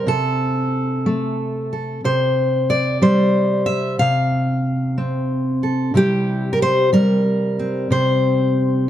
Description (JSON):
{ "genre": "folk, solo fingerstyle acoustic guitar", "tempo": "61 BPM (dotted quarters)", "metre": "6/8", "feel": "straight", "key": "C mixolydian", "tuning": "A4 = 440 Hz", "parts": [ { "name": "fingerpicked steel-string acoustic guitar", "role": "solo", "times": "0.0-8.9 s", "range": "C3 to F5", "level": "-16 LUFS", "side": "equal", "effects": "none" } ], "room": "moderate studio reverb, RT60 0.7 s", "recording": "dark, warm production", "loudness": "-16 LUFS", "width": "side -11 dB against mid", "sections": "0.0-8.9 A section", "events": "none", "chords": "0.1 Am/C; 2.0 C5; 4.0 F/C; 5.9 C7; 7.9 C5" }